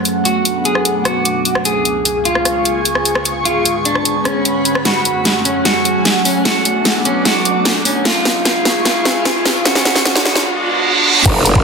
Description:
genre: heavy wobble dubstep.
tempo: 150 BPM.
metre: 4/4.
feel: half-time.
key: unclear.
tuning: A4 = 438 Hz.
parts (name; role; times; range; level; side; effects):
evolving wavetable pad; sustained chords; 0.0-11.6 s; C#2 to F#5; -23 LUFS; right 2 dB; chorus, built-in reverb, phaser, sidechain pumping.
riser, reverse cymbal and impact; sound effects; 2.0-11.6 s; none; -21 LUFS; right 2 dB; none.
airy breathy pad; texture; 0.0-11.6 s; A3 to D6; -21 LUFS; left 1 dB; chorus, phaser, sidechain pumping.
dubstep drum kit; drums; 0.1-11.5 s; crash cymbal, hi-hat, rim click, snare drum; -15 LUFS; equal; none.
electric guitar at the edge of break-up; melody; 0.3-10.4 s; C#4 to G#4; -18 LUFS; right 1 dB; tape echo.
growl bass; bass; 11.3-11.6 s; F#1; -13 LUFS; equal; chorus, overdrive.
electronic kick drum; drums; 11.3-11.6 s; none; -13 LUFS; equal; none.
room: wet digital room reverb, RT60 1.0 s, digital ambience.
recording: dense, heavily limited modern master, high-pass filter.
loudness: -12 LUFS.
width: side -5 dB against mid.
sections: 0.0-11.3 A section.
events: build-up 0.0-11.3; filter sweep on ambient pad 0.0-11.3; riser 2.0-11.3; drum fill 4.9-10.5; reverse cymbal 10.5-11.3; impact 11.3-11.6.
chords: 0.1 Bm7; 1.7 C#; 3.3 G#dim; 4.9 F#madd9; 6.5 Bm7; 8.1 C#; 9.7 G#dim.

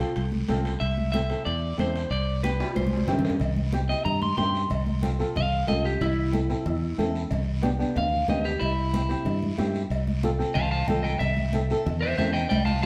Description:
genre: latin, cumbia.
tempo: 185 BPM.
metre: 4/4.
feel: straight.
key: C major.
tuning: A4 = 440 Hz.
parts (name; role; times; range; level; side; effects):
electric guitar at the edge of break-up; melody; 0.0-12.9 s; E4 to C6; -32 LUFS; equal; spring reverb, slapback echo, plate reverb.
flamenco guitar; accompaniment; 0.0-12.4 s; B3 to A4; -33 LUFS; equal; none.
fingered electric bass; bass; 0.0-12.9 s; C2 to G2; -30 LUFS; equal; none.
guiro; percussion; 0.0-12.9 s; none; -48 LUFS; equal; none.
congas; percussion; 0.2-12.9 s; none; -33 LUFS; equal; none.
timbales and cowbell; percussion; 0.2-12.9 s; none; -38 LUFS; equal; none.
room: wet studio reverb, RT60 1.0 s.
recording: heard from further back in the room.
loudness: -26 LUFS.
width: mono.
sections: 0.0-3.4 A section; 3.4-12.9 B section.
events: drum fill 2.6-3.4, 12.5-12.9; clean electric guitar solo 3.4-12.9.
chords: 0.0 F/C; 0.8 Am/C; 2.1 G/C; 2.8 C; 4.7 F/C; 6.0 Am/C; 7.3 G/C; 8.6 C; 9.9 F/C; 11.2 Am/C.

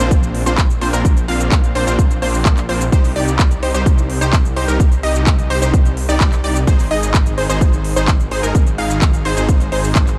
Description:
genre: EDM, festival progressive house.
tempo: 128 BPM.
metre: 4/4.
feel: straight.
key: unclear.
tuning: A4 = 439 Hz.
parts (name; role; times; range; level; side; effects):
unison pluck; arpeggios; 0.0-10.2 s; Bb4 to F5; -26 LUFS; equal; sidechain pumping, tape echo.
supersaw stab; riff; 0.0-10.2 s; Bb3 to F5; -24 LUFS; equal; sidechain pumping, tape echo.
detuned saw bass; bass; 0.0-10.2 s; Ab1 to C2; -22 LUFS; equal; chorus, sidechain pumping.
big-room dance drum kit; drums; 0.0-10.2 s; cabasa, handclaps, hi-hat; -26 LUFS; equal; none.
impact; sound effects; 0.0-1.0 s; none; barely audible; none; none.
electronic kick drum; drums; 0.1-10.0 s; none; -15 LUFS; equal; none.
room: little or no reverb.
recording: dark, warm production.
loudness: -15 LUFS.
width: mono.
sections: 0.0-10.2 A section.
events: impact 0.0-1.0.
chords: 0.0 Bbadd9; 2.9 Cm; 6.7 Ab.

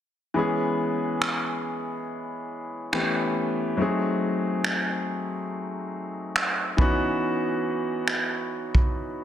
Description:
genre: contemporary R&B.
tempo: 70 BPM.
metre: 4/4.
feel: swing 58% on 16ths.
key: E major.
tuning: A4 = 440 Hz.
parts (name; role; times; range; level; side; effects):
clear concert grand piano; accompaniment; 0.3-9.2 s; E3 to G#4; -26 LUFS; left 1 dB; none.
vintage brush drum kit; drums; 1.2-8.9 s; finger snaps, kick drum; -24 LUFS; right 1 dB; soft clipping on snare.
room: light reverb, small room ambience.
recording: dense, heavily limited modern master.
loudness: -24 LUFS.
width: side -10 dB against mid.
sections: 0.4-9.2 A section.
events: none.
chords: 0.4 E6; 2.9 A9; 3.8 G#7b9; 6.8 C#m11.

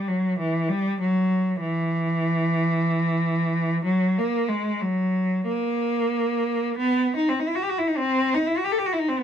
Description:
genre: classical, free, expressive piece for unaccompanied cello.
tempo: 45-51 BPM.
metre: 4/4.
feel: rubato.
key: unclear.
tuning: A4 = 442 Hz.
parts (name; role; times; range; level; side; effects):
clear cello; solo; 0.0-9.2 s; E3 to A4; -21 LUFS; equal; none.
room: light reverb.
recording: close, detailed microphones.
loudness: -21 LUFS.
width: side -9 dB against mid.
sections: 0.0-9.2 A section.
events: none.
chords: none.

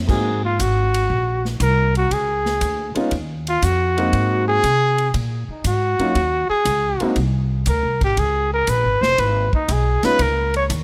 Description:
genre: jazz, small-group swing and bop.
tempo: 119 BPM.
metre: 4/4.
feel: swing 69% on 8ths.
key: Ab mixolydian.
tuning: A4 = 440 Hz.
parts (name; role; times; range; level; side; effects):
upright bass; bass; 0.0-10.8 s; F1 to C3; -24 LUFS; equal; none.
warm trumpet; melody; 0.1-10.6 s; Eb4 to Db5; -22 LUFS; equal; none.
warm upright piano; accompaniment; 0.1-10.2 s; Gb3 to Gb4; -25 LUFS; equal; none.
swinging big-band drum kit; drums; 0.1-10.8 s; crash cymbal, hi-hat, kick drum, ride cymbal, snare drum; -29 LUFS; equal; none.
room: light reverb.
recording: none.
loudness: -19 LUFS.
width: mono.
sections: 0.1-10.8 A section.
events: trumpet solo 0.1-10.8.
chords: 0.1 Ab9; 2.1 Dbadd9; 4.1 Ab9; 6.1 Ebm7; 7.2 Ab; 8.2 Db7(no3).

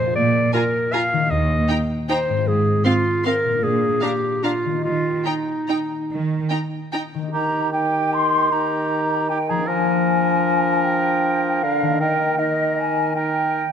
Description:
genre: classical, orchestral ballroom waltz.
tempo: 134-168 BPM.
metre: 3/4.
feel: rubato.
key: Eb major.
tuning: A4 = 440 Hz.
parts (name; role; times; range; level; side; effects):
clear clarinet; second line; 0.0-13.6 s; D4 to F5; -23 LUFS; equal; none.
concert harp; arpeggios; 0.0-13.7 s; Ab2 to Bb4; -27 LUFS; left 7 dB; none.
rich studio cello section; bass; 0.2-6.4 s; Eb2 to Eb3; -24 LUFS; right 3 dB; none.
rich studio violin section; melody; 0.5-7.0 s; Bb5 to C6; -34 LUFS; left 4 dB; none.
rich studio violin section; second line; 0.5-7.0 s; F5 to Ab5; -31 LUFS; right 2 dB; none.
rich studio viola section; accompaniment; 0.5-7.0 s; C4 to F4; -27 LUFS; right 2 dB; none.
mellow hollow small flute group; second line; 7.3-13.7 s; Eb5 to C6; -21 LUFS; left 1 dB; none.
warm oboe; second line; 7.3-13.6 s; G4 to Bb4; -26 LUFS; right 2 dB; none.
warm bassoon; accompaniment; 7.3-13.7 s; D3 to F3; -26 LUFS; right 2 dB; none.
room: moderate scoring stage reverb, RT60 1.8 s.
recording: close, detailed microphones.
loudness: -18 LUFS.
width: side -7 dB against mid.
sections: 0.0-7.3 A section; 7.3-13.7 A section.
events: none.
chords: 0.2 Bb7; 1.3 Eb; 2.5 Fm/Ab; 3.6 Bb7; 4.8 Eb; 9.7 Bb7/F; 12.0 Eb.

